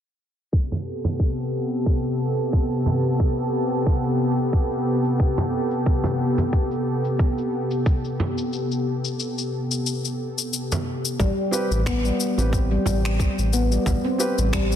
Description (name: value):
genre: organic downtempo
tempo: 90 BPM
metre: 4/4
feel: swing 55% on 16ths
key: A minor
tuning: A4 = 437 Hz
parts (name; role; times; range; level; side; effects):
- warm analog pad; sustained chords; 0.5-11.2 s; C3 to A4; -23 LUFS; equal; chorus, sidechain pumping
- electronic kick drum; drums; 0.5-14.7 s; none; -22 LUFS; equal; none
- electronic shaker and finger snaps; drums; 0.5-14.8 s; none; -29 LUFS; left 5 dB; soft clipping on snare
- frame drum; percussion; 0.7-14.0 s; none; -27 LUFS; right 2 dB; none
- handpan; arpeggios; 11.2-14.7 s; G3 to C4; -24 LUFS; left 1 dB; ping-pong delay
- round analog bass; bass; 11.2-14.8 s; A1; -22 LUFS; equal; sidechain pumping
- felt-muted upright piano; accompaniment; 11.5-14.5 s; C4 to B4; -29 LUFS; right 1 dB; vintage 12-bit sampler grit, sidechain pumping, ping-pong delay
room: light reverb, small room reverb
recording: dense, heavily limited modern master, low-pass filter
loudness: -20 LUFS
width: side -9 dB against mid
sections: 0.5-11.2 A section; 11.2-14.8 B section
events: filter sweep 0.5-11.2; break 8.5-11.2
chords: 0.5 Am9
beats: | 0.53 1.20 1.86 2.53 | 3.20 3.86 4.53 5.20 | 5.86 6.53 7.20 7.86 | 8.53 9.20 9.86 10.53 | 11.20 11.86 12.53 13.20 | 13.86 14.53